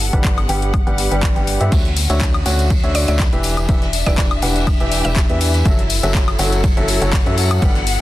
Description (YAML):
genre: piano house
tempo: 122 BPM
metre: 4/4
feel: swing 54% on 16ths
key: unclear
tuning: A4 = 440 Hz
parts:
  - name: organ-like FM bass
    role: bass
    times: 0.0-8.0 s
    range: E1 to G2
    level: -19 LUFS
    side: equal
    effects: sidechain pumping
  - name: house drum kit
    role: drums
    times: 0.0-8.0 s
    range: handclaps, hi-hat, woodblock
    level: -24 LUFS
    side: left 3 dB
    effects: overdrive
  - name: rich chamber string section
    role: texture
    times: 0.0-8.0 s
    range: B3 to F#5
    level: -25 LUFS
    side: left 2 dB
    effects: sidechain pumping
  - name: bright upright piano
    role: riff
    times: 0.1-7.8 s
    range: D3 to G5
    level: -22 LUFS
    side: equal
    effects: sidechain pumping, low-pass filter
  - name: electronic kick drum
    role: drums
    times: 0.1-7.7 s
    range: none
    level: -17 LUFS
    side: equal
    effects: overdrive
  - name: vintage brush drum kit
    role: drums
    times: 1.7-8.0 s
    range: hi-hat, ride cymbal, snare drum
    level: -29 LUFS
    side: right 2 dB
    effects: sidechain pumping on cymbals, high-pass filter on cymbals, sidechain pumping on hats, high-pass filter on hats, soft clipping on snare, high-pass filter on snare, high-pass filter on room
  - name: tambourine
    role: percussion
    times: 1.7-8.0 s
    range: none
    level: -30 LUFS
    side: left 2 dB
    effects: none
  - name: mallet-like synth pluck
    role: melody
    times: 2.9-5.5 s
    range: D5 to E5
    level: -27 LUFS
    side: equal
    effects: chorus, dub echo
room: small room ambience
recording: dense, heavily limited modern master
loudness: -14 LUFS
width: side -16 dB against mid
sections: 0.0-8.0 A section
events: none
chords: 0.0 Gmaj7; 1.7 Dmaj9; 3.4 Em7; 5.7 F#m7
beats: 0.24 0.74 1.23 | 1.72 2.21 2.70 3.20 | 3.69 4.18 4.67 5.16 | 5.66 6.15 6.64 7.13 | 7.62